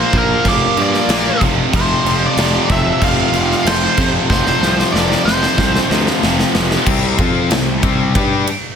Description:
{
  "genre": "hard rock",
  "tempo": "94 BPM",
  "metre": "4/4",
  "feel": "straight",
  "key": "unclear",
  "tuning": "A4 = 440 Hz",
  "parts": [
    { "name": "nasal lead guitar with a parked wah", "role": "melody", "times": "0.0-6.2 s", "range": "G4 to F5", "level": "-19 LUFS", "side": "right 1 dB", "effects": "overdrive, analog delay" },
    { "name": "heavy high-gain guitar", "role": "riff", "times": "0.0-8.5 s", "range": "F2 to G4", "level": "-23 LUFS", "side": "equal", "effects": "none" },
    { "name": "overdriven electric guitar", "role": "riff", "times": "0.0-8.5 s", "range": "F2 to G4", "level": "-20 LUFS", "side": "left 12 dB", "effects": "none" },
    { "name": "tight distorted guitar", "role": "riff", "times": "0.0-6.9 s", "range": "F2 to Bb3", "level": "-20 LUFS", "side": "right 11 dB", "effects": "distortion" },
    { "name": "fuzz picked electric bass", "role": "bass", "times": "0.1-8.5 s", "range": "F1 to G2", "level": "-20 LUFS", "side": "equal", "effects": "overdrive" },
    { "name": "big rock drum kit", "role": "drums", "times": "0.1-8.6 s", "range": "crash cymbal, kick drum, ride cymbal, snare drum", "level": "-18 LUFS", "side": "equal", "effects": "none" }
  ],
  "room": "light reverb, small room ambience",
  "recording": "none",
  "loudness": "-12 LUFS",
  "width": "side -7 dB against mid",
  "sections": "0.0-6.9 A section; 6.9-8.8 B section",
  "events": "drum fill 4.3-6.9",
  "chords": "0.0 Bb; 1.4 F5; 6.9 C5"
}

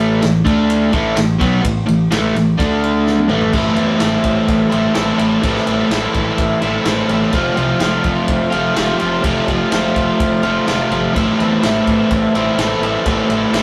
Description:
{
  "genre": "garage rock duo or trio",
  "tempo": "126 BPM",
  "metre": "4/4",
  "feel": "straight",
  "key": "A minor",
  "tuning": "A4 = 440 Hz",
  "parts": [
    { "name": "crunchy overdriven guitar", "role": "riff", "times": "0.0-13.6 s", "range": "F2 to F4", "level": "-16 LUFS", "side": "equal", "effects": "none" },
    { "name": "growling picked electric bass", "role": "bass", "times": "0.0-13.6 s", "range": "F1 to E2", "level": "-27 LUFS", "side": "equal", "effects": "overdrive, tube saturation" },
    { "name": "vintage drum kit", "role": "drums", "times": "0.2-13.6 s", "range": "crash cymbal, kick drum, ride cymbal, snare drum, toms", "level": "-25 LUFS", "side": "equal", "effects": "none" }
  ],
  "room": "wet small room reverb, RT60 0.6 s",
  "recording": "rough rehearsal-room recording",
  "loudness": "-16 LUFS",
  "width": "mono",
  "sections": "0.0-3.5 A section; 3.5-13.6 B section",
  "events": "drum fill 3.1-3.5",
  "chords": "0.5 D5; 0.9 A5; 2.6 D5; 3.3 A5; 3.5 Am; 7.3 F; 11.2 Am"
}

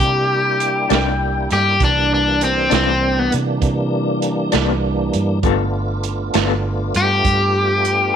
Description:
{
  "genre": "slow blues",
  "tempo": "66 BPM (dotted quarters)",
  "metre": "12/8",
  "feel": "straight",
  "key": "unclear",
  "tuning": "A4 = 440 Hz",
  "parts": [
    { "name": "crunchy overdriven guitar", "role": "melody", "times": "0.0-8.2 s", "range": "C4 to G4", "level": "-16 LUFS", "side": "left 2 dB", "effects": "slapback echo" },
    { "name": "tonewheel organ", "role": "sustained chords", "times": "0.0-8.2 s", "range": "E3 to F4", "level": "-22 LUFS", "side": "right 1 dB", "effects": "slow rotary speaker, overdrive, chorus vibrato" },
    { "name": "vintage muted fingered electric bass", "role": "bass", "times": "0.0-8.1 s", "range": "G1 to C3", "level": "-21 LUFS", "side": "right 1 dB", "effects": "none" },
    { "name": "crunchy breakbeat drum kit", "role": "drums", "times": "0.0-8.0 s", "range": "hi-hat, kick drum, snare drum", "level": "-22 LUFS", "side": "right 6 dB", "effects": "none" },
    { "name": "electric guitar through a small old amp", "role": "accompaniment", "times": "0.9-6.5 s", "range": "C3 to A4", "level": "-22 LUFS", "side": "left 14 dB", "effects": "tremolo" }
  ],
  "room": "light reverb, studio ambience",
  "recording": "1960s-style stereo with parts hard left and right",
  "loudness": "-15 LUFS",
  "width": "side -8 dB against mid",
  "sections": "0.0-8.2 A section",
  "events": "overdriven electric guitar solo 0.0-8.2",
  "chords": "0.0 C9; 5.4 G9"
}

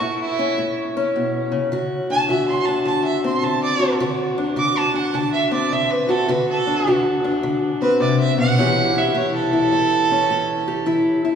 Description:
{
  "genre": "acoustic country blues, solo or duo",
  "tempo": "105 BPM",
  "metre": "4/4",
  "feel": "swing 66% on 8ths",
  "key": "A mixolydian",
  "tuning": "A4 = 440 Hz",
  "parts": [
    { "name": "rich fiddle", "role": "melody", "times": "0.0-11.0 s", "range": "E4 to D6", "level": "-21 LUFS", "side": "right 4 dB", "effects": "none" },
    { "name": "fingerpicked steel-string acoustic guitar", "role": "accompaniment", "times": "0.0-11.4 s", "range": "A2 to A4", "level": "-19 LUFS", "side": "left 2 dB", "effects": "none" }
  ],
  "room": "wet cathedral reverb, RT60 5.1 s",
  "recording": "recorded in a church or concert hall, small room ambience",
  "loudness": "-17 LUFS",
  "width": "side -7 dB against mid",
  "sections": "0.0-11.4 A section",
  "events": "fiddle solo 0.0-11.4",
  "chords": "0.0 A; 1.7 D7; 8.6 A7"
}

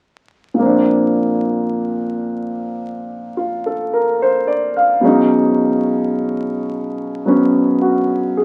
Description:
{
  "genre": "jazz",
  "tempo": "54 BPM",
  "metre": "4/4",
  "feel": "swing 67% on 8ths",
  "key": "unclear",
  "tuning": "A4 = 440 Hz",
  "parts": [
    { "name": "warm concert grand piano", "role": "accompaniment", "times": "0.5-8.4 s", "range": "Bb2 to F5", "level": "-17 LUFS", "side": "equal", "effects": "none" }
  ],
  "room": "moderate club reverb, RT60 0.7 s",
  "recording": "very old 78 rpm record, vinyl crackle",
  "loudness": "-17 LUFS",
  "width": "mono",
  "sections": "0.6-8.4 A section",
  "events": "none",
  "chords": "0.6 Bb; 5.0 B6"
}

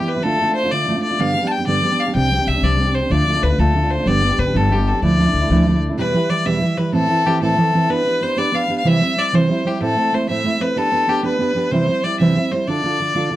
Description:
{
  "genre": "celtic folk, Celtic jig",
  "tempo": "125 BPM (dotted quarters)",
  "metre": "6/8",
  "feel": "straight",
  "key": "D dorian",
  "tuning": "A4 = 441 Hz",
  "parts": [
    { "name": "rich fiddle", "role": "melody", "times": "0.0-13.4 s", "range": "G4 to A5", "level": "-19 LUFS", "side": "left 2 dB", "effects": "none" },
    { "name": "fingerpicked steel-string acoustic guitar", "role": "accompaniment", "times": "0.0-13.4 s", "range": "E2 to C5", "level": "-18 LUFS", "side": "right 2 dB", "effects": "none" },
    { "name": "upright bass", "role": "bass", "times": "2.1-5.9 s", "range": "G1 to D2", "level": "-19 LUFS", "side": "left 2 dB", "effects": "none" }
  ],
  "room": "moderate booth ambience, RT60 0.2 s",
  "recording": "dry, close 1970s-style studio recording",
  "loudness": "-15 LUFS",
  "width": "side -14 dB against mid",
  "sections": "0.0-6.0 A section; 6.0-13.4 B section",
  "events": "none",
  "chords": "0.2 Dm; 1.2 G; 2.1 Csus2; 3.1 Dm; 4.1 G; 5.0 Dmadd9; 6.0 Em; 6.9 Am; 7.9 G/B; 8.8 C; 9.8 Am; 10.8 G/B; 11.7 C; 12.7 Dm"
}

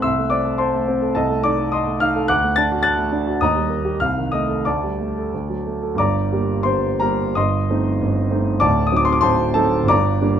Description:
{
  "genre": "classical, romantic character piece for solo piano",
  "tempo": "82-109 BPM",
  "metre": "2/4",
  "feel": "rubato",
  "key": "unclear",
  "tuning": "A4 = 439 Hz",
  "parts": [
    { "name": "warm grand piano", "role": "solo", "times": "0.0-10.4 s", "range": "D1 to A6", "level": "-17 LUFS", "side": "equal", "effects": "none" }
  ],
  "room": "light reverb",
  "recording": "close, detailed microphones",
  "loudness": "-17 LUFS",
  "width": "side -9 dB against mid",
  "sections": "0.0-6.0 A section; 6.0-10.4 B section",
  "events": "none",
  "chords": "0.0 Am/C; 1.2 Adim/C; 2.3 D; 3.4 Eb; 4.0 Adim/C; 4.7 Dsus4; 5.3 D; 6.0 Gm; 7.4 Adim/G; 8.6 D7b9"
}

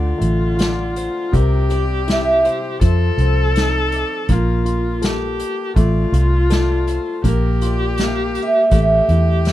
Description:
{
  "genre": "acoustic folk-pop ballad",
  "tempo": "81 BPM",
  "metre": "4/4",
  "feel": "straight",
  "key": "unclear",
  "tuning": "A4 = 439 Hz",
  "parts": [
    { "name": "picked old ladder-braced acoustic guitar", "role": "melody", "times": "0.0-9.5 s", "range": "Bb4 to F5", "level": "-21 LUFS", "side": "right 2 dB", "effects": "none" },
    { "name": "clear viola", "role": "second line", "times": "0.0-9.5 s", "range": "F4 to A4", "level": "-22 LUFS", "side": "left 2 dB", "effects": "none" },
    { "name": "warm upright piano", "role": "accompaniment", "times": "0.0-9.5 s", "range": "C3 to A4", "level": "-25 LUFS", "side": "left 2 dB", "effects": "none" },
    { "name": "vintage muted fingered electric bass", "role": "bass", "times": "0.0-9.5 s", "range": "A1 to F2", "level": "-17 LUFS", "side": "equal", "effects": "none" },
    { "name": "unplugged drum kit", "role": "drums", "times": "0.2-9.5 s", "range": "hi-hat, kick drum, snare drum", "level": "-20 LUFS", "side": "equal", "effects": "none" }
  ],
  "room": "little or no reverb",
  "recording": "dark, warm production",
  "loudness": "-15 LUFS",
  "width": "side -14 dB against mid",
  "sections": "0.0-9.5 A section",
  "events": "none",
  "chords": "0.0 Dm; 1.3 C; 2.8 F7; 4.3 Bb5; 5.8 F6/A; 7.2 Gm7/Bb; 8.7 A5"
}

